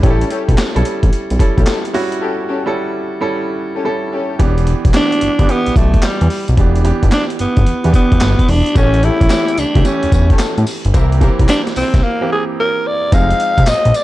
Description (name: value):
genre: R&B, new jack swing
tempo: 110 BPM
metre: 4/4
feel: swing 66% on 16ths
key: E dorian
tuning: A4 = 440 Hz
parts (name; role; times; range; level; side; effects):
- clear baby grand piano; accompaniment; 0.0-14.0 s; E3 to A4; -20 LUFS; right 3 dB; none
- dark symphonic string section; stabs; 0.0-4.3, 8.8-11.4 s; C4 to Bb4; -24 LUFS; left 5 dB; tape echo
- fat analog bass; bass; 0.0-13.9 s; E1 to A2; -14 LUFS; equal; none
- boom bap sampler-style drum kit; drums; 0.0-14.0 s; handclaps, hi-hat, kick drum, snare drum, tambourine; -15 LUFS; equal; none
- growling alto saxophone; melody; 5.0-14.0 s; G3 to F5; -16 LUFS; equal; none
room: small room ambience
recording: dark, warm production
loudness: -12 LUFS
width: side -16 dB against mid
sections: 0.0-4.4 A section; 4.4-13.1 B section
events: break 2.2-4.4, 12.0-13.1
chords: 0.0 A7; 4.4 Em7; 8.8 A7; 10.9 C7; 13.1 Fm7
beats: | 0.03 0.58 1.12 1.67 | 2.21 2.76 3.30 3.85 | 4.39 4.94 5.49 6.03 | 6.58 7.12 7.67 8.21 | 8.76 9.30 9.85 10.39 | 10.94 11.49 12.03 12.58 | 13.12 13.67